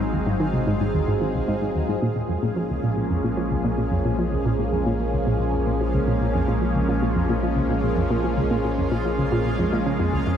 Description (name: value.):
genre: ambient, sequencer-driven space music.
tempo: 111 BPM.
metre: 4/4.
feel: straight.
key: Bb minor.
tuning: A4 = 440 Hz.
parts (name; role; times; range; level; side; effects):
lush unison pad; sustained chords; 0.0-10.4 s; F3 to Ab4; -24 LUFS; equal; chorus, phaser.
analog pluck; riff; 0.0-10.3 s; C2 to F3; -24 LUFS; equal; chorus, tape echo.
warm sub bass; bass; 0.0-10.4 s; Ab1 to Bb1; -29 LUFS; equal; none.
bubbling stepped-filter texture; texture; 0.0-10.4 s; F4 to F5; -35 LUFS; equal; chorus, built-in reverb.
room: wet cathedral reverb, RT60 5.9 s.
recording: in a vast, echoing space.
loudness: -20 LUFS.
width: side -9 dB against mid.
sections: 0.0-10.4 A section.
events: filter sweep on synth arpeggio sound 0.0-10.4.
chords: 0.0 Ab7; 2.0 Bbm7.